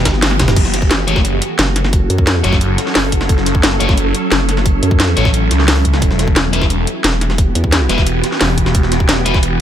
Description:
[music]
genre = dark technical drum and bass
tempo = 176 BPM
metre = 4/4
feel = straight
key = F# phrygian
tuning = A4 = 440 Hz
[part]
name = swarming drone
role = sustained chords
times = 0.0-9.6 s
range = E3 to A4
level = -20 LUFS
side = right 1 dB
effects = built-in reverb, sidechain pumping
[part]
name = phased detuned saw bass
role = bass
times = 0.0-9.6 s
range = E1 to C#2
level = -16 LUFS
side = equal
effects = phaser, overdrive, sidechain pumping
[part]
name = vowel-sweep wobble bass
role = bass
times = 0.1-7.9 s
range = E1 to F#2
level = -16 LUFS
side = equal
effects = chorus
[part]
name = drum and bass drum kit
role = drums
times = 0.1-9.5 s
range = crash cymbal, hi-hat, snare drum, toms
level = -17 LUFS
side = equal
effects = none
[part]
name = electronic kick drum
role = drums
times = 0.1-9.4 s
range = none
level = -15 LUFS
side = equal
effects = none
[part]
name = jungle sampler-style drum kit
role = drums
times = 0.1-9.5 s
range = hi-hat, snare drum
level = -24 LUFS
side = equal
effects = overdrive, high-pass filter on hats, high-pass filter on snare
[part]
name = sludgy distorted guitar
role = stabs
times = 1.1-9.4 s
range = G3 to C#5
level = -23 LUFS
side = left 4 dB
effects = overdrive, dub echo
[sound]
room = little or no reverb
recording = none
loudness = -11 LUFS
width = side -10 dB against mid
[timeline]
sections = 0.6-9.6 A section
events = band accent 0.2; drum fill 0.3; drop 0.6-9.6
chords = 0.0 Em; 0.6 F#m; 6.0 Em

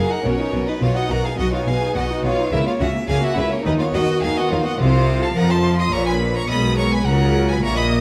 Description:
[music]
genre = classical, baroque-style concerto movement with solo episodes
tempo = 106 BPM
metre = 4/4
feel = straight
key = unclear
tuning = A4 = 441 Hz
[part]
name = clear chamber violin section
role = melody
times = 0.0-8.0 s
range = Db5 to Eb6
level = -30 LUFS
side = equal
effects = none
[part]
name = clear violin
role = melody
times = 0.0-7.8 s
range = Bb4 to C6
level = -28 LUFS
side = equal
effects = none
[part]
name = rich chamber violin section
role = second line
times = 0.0-8.0 s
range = Db4 to Eb5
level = -28 LUFS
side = equal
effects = none
[part]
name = harpsichord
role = accompaniment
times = 0.0-8.0 s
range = Gb2 to F#4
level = -30 LUFS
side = equal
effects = none
[part]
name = warm chamber viola section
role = accompaniment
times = 0.0-8.0 s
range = F3 to F#4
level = -28 LUFS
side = equal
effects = none
[part]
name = clear chamber double bass section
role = bass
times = 0.0-8.0 s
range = Bb1 to F2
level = -25 LUFS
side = equal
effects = none
[part]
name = clear studio cello section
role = bass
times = 0.0-8.0 s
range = Bb2 to F3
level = -25 LUFS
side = equal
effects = none
[sound]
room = wet recital hall reverb, RT60 1.7 s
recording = none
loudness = -19 LUFS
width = mono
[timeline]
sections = 0.0-8.0 A section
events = none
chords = 0.2 B; 2.5 Bbdim/Db; 3.7 B/D#; 4.8 F7/C; 5.9 Bbm; 7.1 Gb7/Db

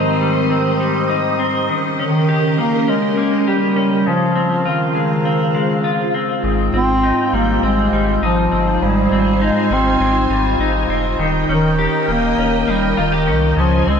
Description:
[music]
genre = dream pop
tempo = 101 BPM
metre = 4/4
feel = straight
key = Ab major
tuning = A4 = 440 Hz
[part]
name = mellow bass clarinet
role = melody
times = 0.0-14.0 s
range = Eb3 to C4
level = -18 LUFS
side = equal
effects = tape echo
[part]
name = ensemble organ-string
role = sustained chords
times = 0.0-14.0 s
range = Db3 to Ab5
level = -21 LUFS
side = equal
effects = phaser, ensemble chorus
[part]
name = clean electric guitar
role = arpeggios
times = 0.0-14.0 s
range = Ab2 to G4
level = -20 LUFS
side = left 3 dB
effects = lush chorus, tape echo
[part]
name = warm sub bass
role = bass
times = 6.4-14.0 s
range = Eb1 to Db2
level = -21 LUFS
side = equal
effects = none
[sound]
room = moderate huge ambient reverb, RT60 4.7 s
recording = none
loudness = -14 LUFS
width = side -6 dB against mid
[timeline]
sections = 0.0-14.0 A section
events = none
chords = 0.0 Abmaj7; 1.7 Eb7; 4.1 Dbmaj7; 6.4 Abmaj7; 11.2 Eb7

